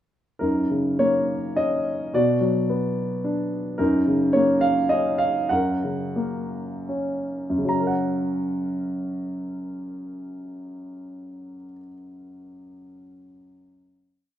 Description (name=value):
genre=classical, lyrical solo piano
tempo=74-111 BPM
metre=3/4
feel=rubato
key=F# major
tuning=A4 = 440 Hz
part: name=dark concert grand piano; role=solo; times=0.4-14.4 s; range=F#2 to A#5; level=-22 LUFS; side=equal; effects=none
room=moderate recital hall reverb, RT60 1.6 s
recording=minimal, uncompressed stereo recording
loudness=-21 LUFS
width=side -11 dB against mid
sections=0.4-7.7 A section; 7.7-12.4 final chord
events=slowing down 3.8-7.7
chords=0.4 F#6; 2.1 Bm; 3.8 F#6; 5.5 F#